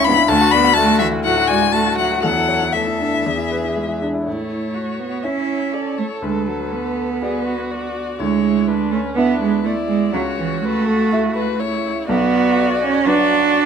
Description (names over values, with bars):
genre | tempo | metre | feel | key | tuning
quick classical-period movement for piano quartet | 122 BPM | 4/4 | straight | A major | A4 = 440 Hz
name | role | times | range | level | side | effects
warm violin | melody | 0.0-13.7 s | A4 to B5 | -21 LUFS | left 7 dB | none
rich cello | second line | 0.0-13.7 s | E3 to D4 | -20 LUFS | right 6 dB | none
clear grand piano | accompaniment | 0.0-13.7 s | B1 to E5 | -22 LUFS | left 2 dB | none
rich viola | accompaniment | 0.0-13.7 s | C#4 to A4 | -26 LUFS | right 2 dB | none
room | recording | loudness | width
light reverb | close, detailed microphones | -16 LUFS | side -7 dB against mid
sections
0.0-4.3 A section; 4.3-13.7 B section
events
none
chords
0.3 D; 2.2 A/E; 3.2 E; 4.3 A; 6.2 Bm/D; 8.2 E7/D; 10.1 A/C#; 12.1 Bm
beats
| 0.29 0.77 1.25 1.74 | 2.24 2.74 3.25 3.76 | 4.26 4.76 5.25 5.74 | 6.23 6.74 7.23 7.72 | 8.20 8.69 9.18 9.66 | 10.14 10.64 11.12 11.61 | 12.09 12.58 13.06 13.55